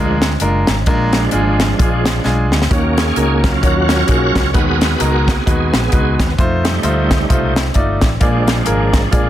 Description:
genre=uptempo gospel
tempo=131 BPM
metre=4/4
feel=swing 59% on 8ths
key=Eb minor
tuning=A4 = 440 Hz
part: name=clear baby grand piano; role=accompaniment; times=0.0-9.3 s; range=Bb2 to D5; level=-19 LUFS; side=left 1 dB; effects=none
part: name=bright tonewheel organ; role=sustained chords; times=0.0-9.3 s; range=F3 to Db5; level=-19 LUFS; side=right 2 dB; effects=fast rotary speaker, overdrive, chorus vibrato
part: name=fingered electric bass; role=bass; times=0.0-9.3 s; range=Gb1 to F2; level=-18 LUFS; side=equal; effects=none
part: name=crisp fusion drum kit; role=drums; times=0.2-9.2 s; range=hi-hat, kick drum, snare drum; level=-16 LUFS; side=equal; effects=none
room=light reverb, small room ambience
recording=dense, heavily limited modern master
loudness=-12 LUFS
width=side -12 dB against mid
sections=0.0-2.7 A section; 2.7-9.3 B section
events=tonewheel organ solo 0.0-2.7, 2.7-9.3; drum fill 2.2-2.7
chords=0.0 Bb7; 2.7 Ebm7; 4.5 Abm7; 6.4 F7; 8.2 Bb7

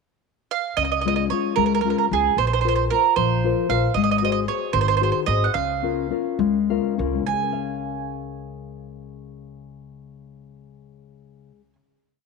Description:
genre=italian folk, Italian serenade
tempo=67-77 BPM (dotted quarters)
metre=6/8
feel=straight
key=Db major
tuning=A4 = 438 Hz
part: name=bowl-back mandolin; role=melody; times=0.5-11.7 s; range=Ab4 to Ab5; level=-22 LUFS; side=right 12 dB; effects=none
part: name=nylon-string guitar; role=accompaniment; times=0.8-12.0 s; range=Db3 to F5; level=-24 LUFS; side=left 10 dB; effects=none
part: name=upright bass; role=bass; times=0.8-11.7 s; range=Ab1 to Db2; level=-27 LUFS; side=equal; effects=none
room=moderate echo chamber reverb, RT60 1.9 s, small room ambience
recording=1960s-style stereo with parts hard left and right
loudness=-19 LUFS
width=side -4 dB against mid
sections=0.0-0.8 pickup bar; 0.8-7.3 A section; 7.3-10.8 final chord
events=slowing down 3.9-7.3; nylon-string guitar fill 6.4-7.3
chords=0.0 N.C.; 0.8 Db; 2.4 Bbsus2; 3.9 Ab7; 5.5 Db6

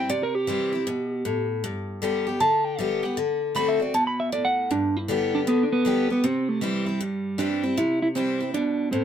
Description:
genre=rock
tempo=156 BPM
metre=4/4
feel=swing 65% on 8ths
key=G major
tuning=A4 = 440 Hz
part: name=mellow electric guitar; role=melody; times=0.0-9.0 s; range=G3 to B5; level=-24 LUFS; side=right 2 dB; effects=none
part: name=picked steel-string acoustic guitar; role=accompaniment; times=0.0-9.0 s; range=G2 to G4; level=-26 LUFS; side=left 4 dB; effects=none
room=moderate small room reverb, RT60 0.6 s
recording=band playing live in one room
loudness=-22 LUFS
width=side -9 dB against mid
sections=0.0-4.7 A section; 4.7-9.0 B section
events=clean electric guitar solo 0.0-4.7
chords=0.0 C; 1.6 G; 3.2 D7; 4.7 G; 6.2 C

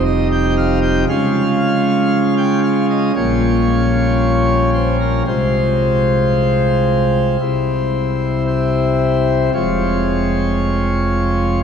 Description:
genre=classical, chorale-style piece for pipe organ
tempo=57 BPM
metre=4/4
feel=straight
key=F minor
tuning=A4 = 440 Hz
part: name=pipe organ, principal chorus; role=solo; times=0.0-11.6 s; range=F1 to G5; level=-14 LUFS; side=equal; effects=none
room=wet church reverb, RT60 4.1 s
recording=dark, warm production, nothing above 10.3 kHz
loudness=-14 LUFS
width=side -7 dB against mid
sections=0.0-11.6 A section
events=none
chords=0.0 Cm/F; 1.1 Db; 3.2 Gm7b5/Bb; 5.3 Fm/C; 7.4 C; 9.5 Fm

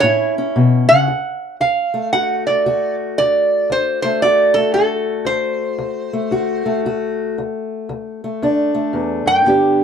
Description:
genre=acoustic country blues, solo or duo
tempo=114 BPM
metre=4/4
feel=swing 64% on 8ths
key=D mixolydian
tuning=A4 = 440 Hz
part: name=lap resonator guitar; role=melody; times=0.0-9.8 s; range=A4 to G5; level=-15 LUFS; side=right 2 dB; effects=none
part: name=fingerpicked steel-string acoustic guitar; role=accompaniment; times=0.0-9.8 s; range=D2 to G4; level=-18 LUFS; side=left 2 dB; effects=none
room=light reverb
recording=dark, warm production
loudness=-15 LUFS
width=side -7 dB against mid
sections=0.0-1.1 A section; 1.1-9.8 B section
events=resonator guitar played with a steel bar solo 0.0-1.1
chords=0.0 A; 1.1 D

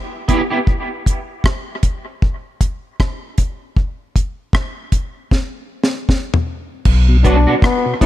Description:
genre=dub reggae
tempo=78 BPM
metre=4/4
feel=swing 58% on 16ths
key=B minor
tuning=A4 = 440 Hz
part: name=electric guitar at the edge of break-up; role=accompaniment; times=0.3-0.6, 7.2-8.1 s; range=B3 to G4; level=-20 LUFS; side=right 3 dB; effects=ensemble chorus, dub echo
part: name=deep reggae drum kit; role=drums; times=0.3-8.1 s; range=crash cymbal, hi-hat, kick drum, rim click, snare drum, toms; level=-16 LUFS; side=equal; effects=none
part: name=warm sub bass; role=bass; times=6.9-7.5 s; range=B1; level=-11 LUFS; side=equal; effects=none
part: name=tonewheel organ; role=accompaniment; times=7.1-8.1 s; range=B2 to D4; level=-20 LUFS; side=left 1 dB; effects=slow rotary speaker, dub echo
part: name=bright trombone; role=second line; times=7.2-8.1 s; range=B3 to E4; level=-17 LUFS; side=left 4 dB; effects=dub echo
room=small room ambience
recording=none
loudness=-15 LUFS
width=side -14 dB against mid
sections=0.0-6.9 A section; 6.9-8.1 B section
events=break 0.0-6.9; drum fill 5.3-6.9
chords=0.0 Em; 0.7 N.C.; 6.9 Bm

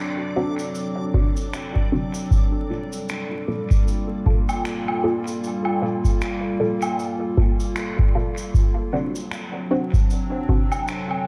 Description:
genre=ambient dub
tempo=77 BPM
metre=4/4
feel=swing 58% on 16ths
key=G minor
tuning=A4 = 440 Hz
part: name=warbly tape-like pad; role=sustained chords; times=0.0-11.3 s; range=F#3 to A4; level=-30 LUFS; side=equal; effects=chorus, built-in reverb
part: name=filtered dub chord stab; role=stabs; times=0.0-10.7 s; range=Bb3 to A4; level=-30 LUFS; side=equal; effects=phaser, analog chorus, dub echo
part: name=backwards swelling texture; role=texture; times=0.0-2.3 s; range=D5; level=-41 LUFS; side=equal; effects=built-in reverb
part: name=cabasa, finger snaps and woodblock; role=drums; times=0.6-11.2 s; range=none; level=-33 LUFS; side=equal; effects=dub echo
part: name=electronic kick drum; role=drums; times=1.1-10.7 s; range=none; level=-22 LUFS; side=equal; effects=none
room=light reverb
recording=dark, warm production, vinyl crackle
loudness=-23 LUFS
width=mono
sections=0.0-2.3 A section; 2.3-11.3 B section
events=none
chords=0.0 D7; 2.3 Gm9; 8.5 D7

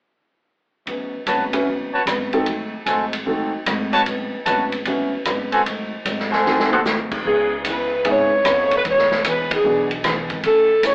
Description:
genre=jazz, big band swing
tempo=151 BPM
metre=4/4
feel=swing 66% on 8ths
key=C# minor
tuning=A4 = 442 Hz
part: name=picked steel-string acoustic guitar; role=accompaniment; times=0.9-10.9 s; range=G#2 to G#4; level=-28 LUFS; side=equal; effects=none
part: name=swinging big-band drum kit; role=drums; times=0.9-10.9 s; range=crash cymbal, hi-hat, kick drum, ride cymbal, rim click, snare drum, toms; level=-24 LUFS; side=equal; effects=none
part: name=bright trumpet section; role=stabs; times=1.3-6.8 s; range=F#4 to A5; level=-18 LUFS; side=equal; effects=none
part: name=upright bass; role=bass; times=1.3-10.9 s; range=E1 to C#2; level=-31 LUFS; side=equal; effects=none
part: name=warm baby grand piano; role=accompaniment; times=1.5-9.9 s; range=B3 to B4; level=-22 LUFS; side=equal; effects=none
part: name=clear saxophone section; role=melody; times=7.3-10.9 s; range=G#4 to C#5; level=-16 LUFS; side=equal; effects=none
room=wet club reverb, RT60 0.5 s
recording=heard from further back in the room, AM radio sound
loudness=-17 LUFS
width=side -27 dB against mid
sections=0.9-7.2 A section; 7.2-10.9 B section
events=drum fill 6.5-6.9; band accent 9.4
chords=0.9 A69; 2.5 G#7b9; 4.1 A69; 5.7 G#7b9; 7.2 C#m7; 8.8 E7; 10.4 Amaj7

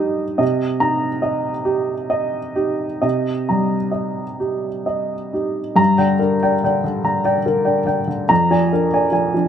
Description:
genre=neoclassical minimalist piano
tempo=43-49 BPM (dotted quarters)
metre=6/8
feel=rubato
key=C minor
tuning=A4 = 438 Hz
part: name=warm upright piano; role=solo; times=0.0-9.5 s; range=F2 to C6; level=-16 LUFS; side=equal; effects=none
room=light reverb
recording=band playing live in one room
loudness=-16 LUFS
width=side -8 dB against mid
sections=0.0-5.8 A section; 5.8-9.5 B section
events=none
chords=0.4 Cm7; 5.8 Gm; 8.3 Bb7/F

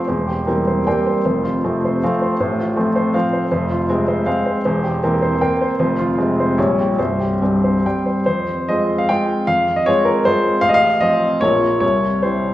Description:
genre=classical, romantic triple-time dance for piano with dotted rhythms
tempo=130-168 BPM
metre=3/4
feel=rubato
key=F major, F minor from 3.5 s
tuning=A4 = 440 Hz
part: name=clear baby grand piano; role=solo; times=0.0-12.5 s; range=C1 to G5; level=-15 LUFS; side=equal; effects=none
room=wet recital hall reverb, RT60 1.7 s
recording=heard from further back in the room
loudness=-15 LUFS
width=side -14 dB against mid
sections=0.0-8.3 A section; 8.3-12.5 B section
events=none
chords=0.1 C7/E; 1.2 F; 2.4 F/A; 3.5 Fm; 4.6 C7/E; 5.8 Fm; 6.6 Gdim/Bb; 7.0 C5; 8.3 Fm; 10.6 F7/A; 11.4 Bbm; 11.8 C

